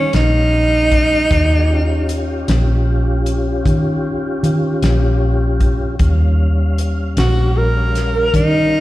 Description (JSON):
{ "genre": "slow blues", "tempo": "51 BPM (dotted quarters)", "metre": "12/8", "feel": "straight", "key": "Eb mixolydian", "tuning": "A4 = 440 Hz", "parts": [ { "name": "breathy tenor saxophone", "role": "melody", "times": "0.0-8.8 s", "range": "Db4 to Bb4", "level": "-16 LUFS", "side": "equal", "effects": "slapback echo, tape echo" }, { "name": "tonewheel organ", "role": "sustained chords", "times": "0.0-8.8 s", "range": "G3 to F5", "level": "-23 LUFS", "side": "left 1 dB", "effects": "slow rotary speaker, chorus vibrato" }, { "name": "vintage muted fingered electric bass", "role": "bass", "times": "0.0-8.8 s", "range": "Bb1 to Eb3", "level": "-16 LUFS", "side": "equal", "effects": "none" }, { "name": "warm soul drum kit", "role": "drums", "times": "0.1-8.5 s", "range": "hi-hat, kick drum, snare drum", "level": "-20 LUFS", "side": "equal", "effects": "none" } ], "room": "small room ambience", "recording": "live gig heard through the venue's PA, recital hall reverb", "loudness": "-13 LUFS", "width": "side -16 dB against mid", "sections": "0.0-8.8 A section", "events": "none", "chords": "0.0 Eb7", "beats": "0.13 | 1.30 2.48 3.65 4.82 | 5.99 7.16 8.33" }